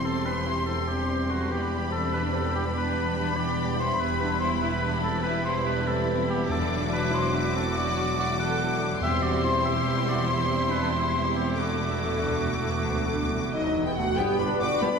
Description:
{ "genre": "cinematic, heroic adventure film score", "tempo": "95 BPM (dotted quarters)", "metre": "12/8", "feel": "straight", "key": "unclear", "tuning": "A4 = 444 Hz", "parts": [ { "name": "clear symphonic violin section", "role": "melody", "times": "0.0-15.0 s", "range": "D#5 to D6", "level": "-33 LUFS", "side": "left 3 dB", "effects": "none" }, { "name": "warm oboe", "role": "second line", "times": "0.0-14.0 s", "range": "F#4 to F#5", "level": "-30 LUFS", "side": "left 1 dB", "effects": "none" }, { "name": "warm symphonic violin section", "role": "second line", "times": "0.0-15.0 s", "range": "A3 to D6", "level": "-34 LUFS", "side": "left 2 dB", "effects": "none" }, { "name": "clear symphonic viola section", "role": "accompaniment", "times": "0.0-15.0 s", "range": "D3 to A4", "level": "-34 LUFS", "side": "equal", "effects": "none" }, { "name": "mellow French horn section", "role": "sustained chords", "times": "0.0-15.0 s", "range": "F#3 to D5", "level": "-32 LUFS", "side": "left 1 dB", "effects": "none" }, { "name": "rich symphonic cello section", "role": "bass", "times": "0.0-14.9 s", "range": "C2 to G2", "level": "-32 LUFS", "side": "right 2 dB", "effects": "none" }, { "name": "rich symphonic double bass section", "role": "bass", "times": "0.0-14.9 s", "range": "E1 to G1", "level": "-32 LUFS", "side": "right 2 dB", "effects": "none" }, { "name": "timpani", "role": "percussion", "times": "6.5-9.6 s", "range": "E2", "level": "-35 LUFS", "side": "left 2 dB", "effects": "none" }, { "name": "silver concert flute", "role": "second line", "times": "13.5-15.0 s", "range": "D#5 to D6", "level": "-35 LUFS", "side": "left 2 dB", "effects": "none" }, { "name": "mellow trumpet section", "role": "stabs", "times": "13.5-15.0 s", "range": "F#3 to F#4", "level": "-32 LUFS", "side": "equal", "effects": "none" }, { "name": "bright trombone section", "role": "sustained chords", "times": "14.2-15.0 s", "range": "G3 to D4", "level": "-34 LUFS", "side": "right 1 dB", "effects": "none" }, { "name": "warm tuba", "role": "bass", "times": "14.2-14.9 s", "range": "G1", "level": "-34 LUFS", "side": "right 2 dB", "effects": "none" } ], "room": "wet scoring stage reverb, RT60 1.5 s", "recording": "heard from further back in the room", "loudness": "-24 LUFS", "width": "side -6 dB against mid", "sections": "0.0-14.2 A section", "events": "none", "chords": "0.0 C/E; 1.5 G/E; 4.0 Em; 6.5 Dadd9/E; 9.0 C/E; 11.6 Dadd9/E; 14.2 G", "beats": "0.27 0.89 | 1.51 2.13 2.75 3.38 | 4.00 4.62 5.25 5.88 | 6.50 7.13 7.76 8.39 | 9.02 9.65 10.28 10.92 | 11.57 12.23 12.88 13.53 | 14.18 14.81" }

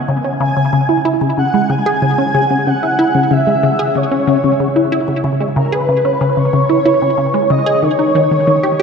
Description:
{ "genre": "ambient", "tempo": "93 BPM", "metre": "4/4", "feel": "straight", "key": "C# minor", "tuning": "A4 = 440 Hz", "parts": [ { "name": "resonant blip pluck", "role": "riff", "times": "0.0-8.8 s", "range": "C#3 to G#4", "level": "-14 LUFS", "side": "equal", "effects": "chorus, phaser, tape echo" }, { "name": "breathy flute-like synth lead", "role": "melody", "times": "0.4-8.8 s", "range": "A#4 to G#5", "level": "-16 LUFS", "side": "equal", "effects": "ensemble chorus, tape echo" } ], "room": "wet cathedral reverb, RT60 5.9 s", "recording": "in a vast, echoing space", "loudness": "-12 LUFS", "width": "side -6 dB against mid", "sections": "0.0-8.8 A section", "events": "none", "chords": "0.0 C#m; 7.8 D#7(no3)", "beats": "| 0.09 0.73 1.38 2.02 | 2.67 3.31 3.96 4.60 | 5.25 5.89 6.54 7.18 | 7.83 8.47" }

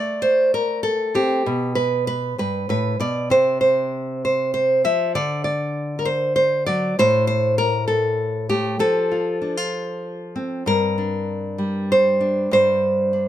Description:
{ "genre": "folk, solo fingerstyle acoustic guitar", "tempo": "65 BPM (dotted quarters)", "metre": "6/8", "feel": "straight", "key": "unclear", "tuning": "A4 = 441 Hz", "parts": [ { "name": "nylon-string guitar", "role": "solo", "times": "0.0-13.3 s", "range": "G2 to E5", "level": "-18 LUFS", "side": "equal", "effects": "none" } ], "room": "moderate studio reverb, RT60 0.8 s", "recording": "none", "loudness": "-18 LUFS", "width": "side -12 dB against mid", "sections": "0.0-10.7 A section; 10.7-13.3 B section", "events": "none", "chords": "0.0 Am; 1.5 G/B; 3.3 Csus4; 5.1 D; 7.0 N.C.; 8.8 F; 10.7 Gm", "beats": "0.53 | 1.45 2.38 | 3.30 4.23 | 5.15 6.06 | 6.97 7.88 | 8.80 9.73 | 10.66 11.59 | 12.51" }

